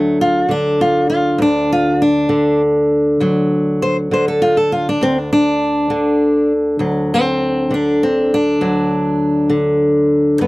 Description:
acoustic country blues, solo or duo; 66 BPM (dotted quarters); 12/8; straight; D mixolydian; A4 = 440 Hz
fingerpicked steel-string acoustic guitar; solo; 0.0-10.5 s; D2 to C5; -13 LUFS; equal
light reverb; dry, close 1970s-style studio recording; -13 LUFS; side -20 dB against mid
0.0-10.5 A section
steel-string acoustic guitar solo 0.0-10.5
0.0 D

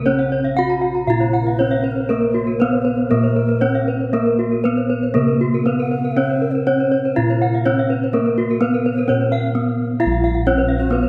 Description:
gamelan; 118-132 BPM; 4/4; straight; Bb pelog; A4 = 440 Hz
gamelan-type bronze metallophone; melody; 0.0-11.1 s; Bb3 to Gb4-40c; -21 LUFS; equal
gamelan-type bronze metallophone; arpeggios; 0.0-11.1 s; Bb4 to Bb5; -32 LUFS; equal
gamelan-type bossed gongs; bass; 0.0-11.1 s; Bb1 to Bb4; -24 LUFS; equal
gamelan-type bronze metallophone; arpeggios; 0.1-11.0 s; Gb4-40c to Gb5-40c; -24 LUFS; equal
breathy bass bansuri; second line; 1.4-11.1 s; Gb4-40c to Gb5-36c; -33 LUFS; equal
light reverb, studio reverb; rough home demo mix; -18 LUFS; mono
0.0-10.0 A section; 10.0-11.1 B section
break 9.3-10.0

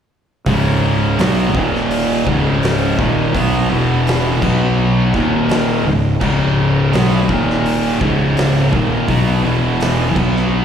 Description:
stoner and doom metal; 83 BPM; 4/4; straight; C# minor; A4 = 440 Hz
thick fuzz guitar; riff; 0.5-10.6 s; C#2 to B3; -17 LUFS; left 5 dB; distortion
thick fuzz guitar; riff; 0.5-10.6 s; C#2 to B3; -20 LUFS; right 10 dB; distortion
tight distorted guitar; riff; 0.5-10.6 s; C#2 to B3; -20 LUFS; right 1 dB; distortion, slapback echo
fuzz fingered electric bass; bass; 0.5-10.6 s; C#1 to B1; -21 LUFS; right 1 dB; overdrive
oversized low-tuned drum kit; drums; 0.5-10.4 s; crash cymbal, hi-hat, kick drum, snare drum; -22 LUFS; equal
small room ambience; live gig heard through the venue's PA, club reverb; -13 LUFS; side -8 dB against mid
0.5-10.6 A section
0.5 C#5; 1.5 D#5; 2.3 C#5; 3.7 E5; 4.4 B5; 5.1 D#5; 5.9 C#5; 7.3 D#5; 8.0 C#5; 9.4 E5

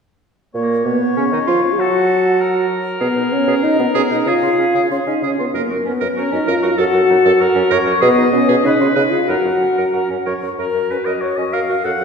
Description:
quick classical-period movement for wind quintet; 96 BPM; 2/4; rubato; F# major; A4 = 440 Hz
mellow hollow silver concert flute; melody; 0.5-12.0 s; A#4 to F#5; -23 LUFS; left 5 dB
bright clarinet; accompaniment; 0.5-12.0 s; A#3 to B4; -22 LUFS; right 4 dB
mellow French horn; accompaniment; 0.5-12.0 s; A#3 to A4; -17 LUFS; equal
dark bassoon; bass; 0.5-12.0 s; F#2 to F#3; -21 LUFS; right 2 dB
clear oboe; second line; 0.6-12.0 s; G#4 to F#5; -22 LUFS; left 4 dB
wet concert hall reverb, RT60 1.9 s; minimal, uncompressed stereo recording; -14 LUFS; side -6 dB against mid
0.6-10.6 A section; 10.6-12.0 A section
0.6 C#13/A#; 1.8 F#m; 3.0 G#m/B (rootless); 4.3 C#; 5.6 F#; 6.8 F#m; 7.4 F#; 8.0 G#m/B (rootless); 8.7 C#7; 9.3 F#

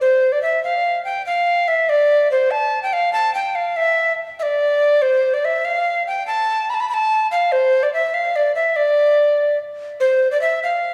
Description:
medieval; 96 BPM (dotted quarters); 6/8; straight; D dorian; A4 = 439 Hz
breathy bright alto recorder; solo; 0.0-10.9 s; C5 to B5; -18 LUFS; equal; tape echo
moderate recital hall reverb, RT60 1.5 s; studio ambience; -18 LUFS; mono
0.0-10.0 A section

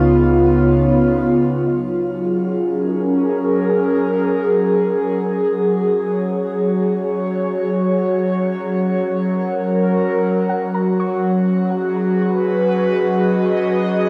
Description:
ambient; free time; F# major; A4 = 440 Hz
airy breathy pad; sustained chords; 0.0-14.1 s; C#3 to D#5; -18 LUFS; equal; chorus, cassette tape, shimmer reverb
deep rumbling drone; bass; 0.0-1.6 s; C#2; -27 LUFS; equal; built-in reverb
soft round pluck; arpeggios; 1.7-5.3, 10.5-12.1 s; D#5 to C#6; -35 LUFS; equal
analog drone; drone; 5.7-14.1 s; F#3 to C#4; -33 LUFS; equal; chorus, cassette tape
wet spring reverb, RT60 1.4 s; home recording on cassette; -18 LUFS; mono
0.0-1.7 A section; 1.7-14.1 B section
fade-in on synth drone 1.7-14.1
0.0 C#7; 1.7 F#maj7; 4.9 F#; 11.3 C#sus2/F#

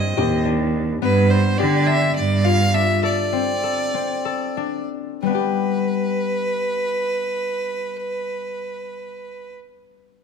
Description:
contemporary instrumental, contemporary; 181-212 BPM (eighths); 7/8; straight; G mixolydian; A4 = 442 Hz
clear fiddle; melody; 0.0-9.5 s; B4 to F5; -23 LUFS; right 2 dB
concert harp; arpeggios; 0.0-9.7 s; G3 to A4; -24 LUFS; left 11 dB
clear cello; bass; 0.0-2.9 s; Eb2 to D3; -19 LUFS; right 3 dB
moderate recital hall reverb, RT60 1.6 s; -18 LUFS; side -6 dB against mid
0.0-5.2 A section; 5.2-9.9 B section
slowing down 1.0-5.2
0.0 Cmadd9/Eb; 1.0 G7; 3.0 D5; 5.2 G

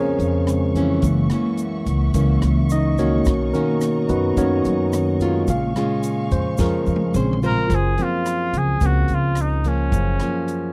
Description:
bossa nova; 108 BPM; 4/4; straight; A4 = 439 Hz
barky tine electric piano; accompaniment; 0.0-10.7 s; Db3 to F5; -25 LUFS; equal
nylon-string guitar; accompaniment; 0.0-10.7 s; F2 to C5; -27 LUFS; equal
dark studio string section; sustained chords; 0.0-7.7 s; Bb3 to Db6; -34 LUFS; equal
upright bass; bass; 0.0-10.2 s; Gb1 to F#2; -24 LUFS; equal
compact cocktail drum kit; drums; 0.2-10.6 s; hi-hat, kick drum, rim click, snare drum, toms; -29 LUFS; equal
egg shaker; percussion; 0.2-10.7 s; -44 LUFS; equal
warm trumpet; melody; 7.5-10.7 s; Db4 to Bb4; -27 LUFS; equal
little or no reverb; dry, close 1970s-style studio recording; -20 LUFS; mono
0.0-7.7 A section; 7.7-10.7 B section
tine electric piano solo 0.0-7.7; drum fill 6.6-7.7
0.0 Bbm7; 1.0 Gb7; 3.3 Bmaj9; 5.5 Bbm7; 7.7 Gbmaj9#11

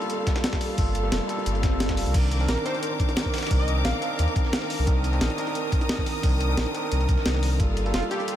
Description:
liquid drum and bass; 176 BPM; 4/4; straight; C minor; A4 = 439 Hz
overdriven tine electric piano; accompaniment; 0.0-8.4 s; Eb3 to Bb4; -29 LUFS; right 1 dB; analog delay
clear studio string section; sustained chords; 0.0-8.4 s; A4 to Eb6; -33 LUFS; left 1 dB; sidechain pumping
breakbeat sampler-style drum kit; drums; 0.0-8.3 s; crash cymbal, hi-hat, snare drum; -31 LUFS; equal
dusty soul sampler-style drum kit; drums; 0.0-8.4 s; hi-hat, snare drum; -38 LUFS; equal; high-pass filter on hats, high-pass filter on snare, high-pass filter on room
electronic kick drum; drums; 0.3-7.7 s; -25 LUFS; equal
warm sub bass; bass; 0.8-8.0 s; F1 to Eb2; -25 LUFS; equal
swell; sound effects; 1.5-2.1 s; -38 LUFS; equal
plucky unison lead; melody; 2.5-4.3, 7.9-8.4 s; F4 to F5; -34 LUFS; equal; wide subtle chorus, ping-pong delay
light reverb; -22 LUFS; side -11 dB against mid
0.0-8.4 A section
swell 1.5-2.1
0.0 Gm9; 2.1 Cm9; 7.6 Gm9

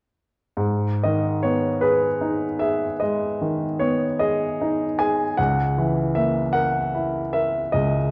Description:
classical, romantic nocturne for solo piano; 51 BPM (dotted quarters); 12/8; rubato; G# minor; A4 = 440 Hz
clear baby grand piano; solo; 0.6-8.1 s; C#2 to G#5; -22 LUFS; equal
wet recital hall reverb, RT60 1.5 s; dark, warm production; -23 LUFS; mono
0.6-8.1 A section
0.6 G#m; 5.4 A#dim/C#

